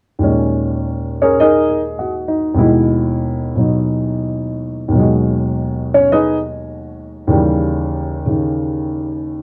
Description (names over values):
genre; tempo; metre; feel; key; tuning
jazz; 102 BPM; 4/4; swing 69% on 8ths; unclear; A4 = 440 Hz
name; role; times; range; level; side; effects
dark baby grand piano; solo; 0.2-9.4 s; D#2 to D#5; -17 LUFS; equal; none
room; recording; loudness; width
moderate studio reverb, RT60 0.5 s; worn, warbling old tape, cassette tape, warbly pitch drift; -17 LUFS; mono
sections
0.2-9.4 A section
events
none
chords
0.2 D#7sus4; 2.6 Emaj9/D#; 4.9 G#m7/D#; 7.3 D#7b9